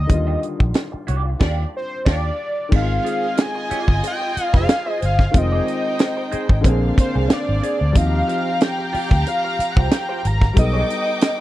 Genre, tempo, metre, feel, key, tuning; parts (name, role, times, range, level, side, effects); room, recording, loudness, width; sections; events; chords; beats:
lush 1970s-style soul; 92 BPM; 4/4; swing 54% on 16ths; Eb major; A4 = 440 Hz
fat analog lead; melody; 0.0-11.4 s; C5 to Bb5; -24 LUFS; equal
clear grand piano; accompaniment; 0.0-11.4 s; D3 to A4; -27 LUFS; left 2 dB
vintage muted fingered electric bass; bass; 0.0-10.8 s; F1 to Eb2; -20 LUFS; equal
small celesta; texture; 0.0-10.9 s; F4 to C5; -36 LUFS; left 3 dB
electric guitar through a small old amp; riff; 0.1-11.3 s; D4 to Eb5; -30 LUFS; right 4 dB; wah, spring reverb
tight funk drum kit; drums; 0.1-11.4 s; crash cymbal, hi-hat, kick drum, snare drum; -16 LUFS; equal
warm studio violin section; second line; 1.4-11.4 s; D4 to D6; -28 LUFS; left 1 dB
little or no reverb; dry, close 1970s-style studio recording; -17 LUFS; side -15 dB against mid
0.0-2.7 A section; 2.7-11.4 B section
band accent 1.4-2.7
0.0 Ebmaj9; 2.7 Ab6; 5.3 Fm7; 6.6 Bb9; 8.0 Eb69; 10.6 B7alt
| 0.10 0.75 1.41 2.06 | 2.72 3.37 4.03 4.68 | 5.34 5.99 6.64 7.30 | 7.95 8.61 9.26 9.91 | 10.57 11.22